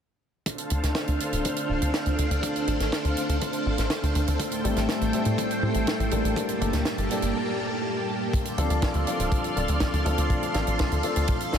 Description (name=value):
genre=italo disco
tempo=122 BPM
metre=4/4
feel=straight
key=D minor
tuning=A4 = 440 Hz
part: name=string machine, full ensemble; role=sustained chords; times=0.5-11.6 s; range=G3 to C6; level=-28 LUFS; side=equal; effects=ensemble chorus
part: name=kick drum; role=drums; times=0.5-11.4 s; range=none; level=-29 LUFS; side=equal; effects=high-pass filter on kick, high-pass filter on snare, high-pass filter on room
part: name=tight funk drum kit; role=drums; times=0.5-11.6 s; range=hi-hat, snare drum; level=-32 LUFS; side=right 1 dB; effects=none
part: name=tight sequencer bass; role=bass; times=0.7-11.6 s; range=D1 to A2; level=-26 LUFS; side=equal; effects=none
part: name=dark grand piano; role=stabs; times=4.6-11.6 s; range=F3 to A4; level=-30 LUFS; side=left 3 dB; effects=wide subtle chorus, ping-pong delay
room=moderate huge ambient reverb, RT60 8.2 s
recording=dreamy mix soaked in reverb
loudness=-23 LUFS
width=side -8 dB against mid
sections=0.5-8.3 A section; 8.3-11.6 B section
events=filter sweep on analog synth bass 0.5-8.3; break 7.3-8.3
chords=0.5 Dm7; 4.4 Am7; 6.4 Gmadd9; 8.3 Dm7